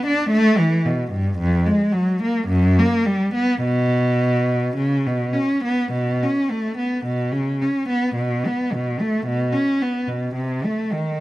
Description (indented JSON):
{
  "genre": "classical, baroque-style suite movement for unaccompanied cello",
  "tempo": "52-56 BPM",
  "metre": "4/4",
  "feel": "rubato",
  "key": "unclear",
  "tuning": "A4 = 440 Hz",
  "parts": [
    { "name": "rich cello", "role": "solo", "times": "0.0-11.2 s", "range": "F2 to D4", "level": "-18 LUFS", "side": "equal", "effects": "none" }
  ],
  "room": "light reverb",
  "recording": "close, detailed microphones",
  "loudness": "-18 LUFS",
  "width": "side -17 dB against mid",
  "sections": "0.0-8.2 A section; 8.2-11.2 B section",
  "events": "none",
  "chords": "none",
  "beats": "0.32 1.39 2.48 | 3.62 4.77 5.92 7.05 | 8.18 9.27 10.36"
}